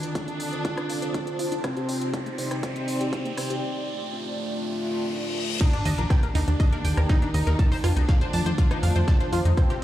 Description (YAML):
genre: melodic techno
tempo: 121 BPM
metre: 4/4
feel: straight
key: unclear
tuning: A4 = 442 Hz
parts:
  - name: fat analog lead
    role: melody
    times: 0.0-9.8 s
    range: C4 to Eb4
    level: -34 LUFS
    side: equal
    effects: sidechain pumping, digital delay
  - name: rich studio violin section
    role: second line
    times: 0.0-9.8 s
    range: C4 to Eb4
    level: -36 LUFS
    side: left 1 dB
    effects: sidechain pumping, low-pass filter, ping-pong delay
  - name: dark analog pad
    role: sustained chords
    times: 0.0-9.8 s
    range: Eb3 to Eb6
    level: -33 LUFS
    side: equal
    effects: chorus, sidechain pumping
  - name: tight sequenced synth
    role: arpeggios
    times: 0.0-9.8 s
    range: Bb3 to A5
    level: -34 LUFS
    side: equal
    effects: chorus, phaser, sidechain pumping, ping-pong delay
  - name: deep house drum kit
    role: drums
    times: 0.0-9.8 s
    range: crash cymbal, hi-hat, rim click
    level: -37 LUFS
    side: equal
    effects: sidechain pumping on hats, high-pass filter on hats, studio reverb, high-pass filter on snare, sidechain pumping on cymbals, high-pass filter on cymbals
  - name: riser, reverse cymbal and sub drop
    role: sound effects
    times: 1.9-7.6 s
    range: none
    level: -36 LUFS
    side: equal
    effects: none
  - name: deep dark ambient pad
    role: texture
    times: 0.0-9.8 s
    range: Eb3 to Eb6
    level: -35 LUFS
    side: right 1 dB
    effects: chorus, built-in reverb, sidechain pumping
  - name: electronic kick drum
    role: drums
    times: 0.2-9.7 s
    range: none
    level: -22 LUFS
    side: equal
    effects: high-pass filter on kick, studio reverb, high-pass filter on room
  - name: dusty soul sampler-style drum kit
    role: drums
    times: 5.6-9.8 s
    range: hi-hat, snare drum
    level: -42 LUFS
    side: equal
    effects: none
  - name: plucky analog bass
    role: bass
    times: 5.9-9.5 s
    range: Bb1 to F2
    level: -22 LUFS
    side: equal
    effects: sidechain pumping
room: light reverb, digital ambience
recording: played on a big sound system in a bare room, stone room reverb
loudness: -22 LUFS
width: side -13 dB against mid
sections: 0.0-5.6 A section; 5.6-9.8 B section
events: build-up 0.0-5.6; filter sweep on analog synth lead 0.0-5.6; filter sweep on violin section 0.0-5.6; riser 1.9-5.6; reverse cymbal 4.6-5.6; drop 5.6-9.8; impact 5.6-7.6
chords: 0.0 F7; 1.6 Cmadd9; 3.6 Dm; 5.6 Ebmaj7; 7.6 F7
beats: 0.15 0.65 1.14 | 1.64 2.14 2.63 3.13 | 3.62 4.12 4.62 5.11 | 5.61 6.10 6.60 7.09 | 7.59 8.09 8.58 9.08 | 9.57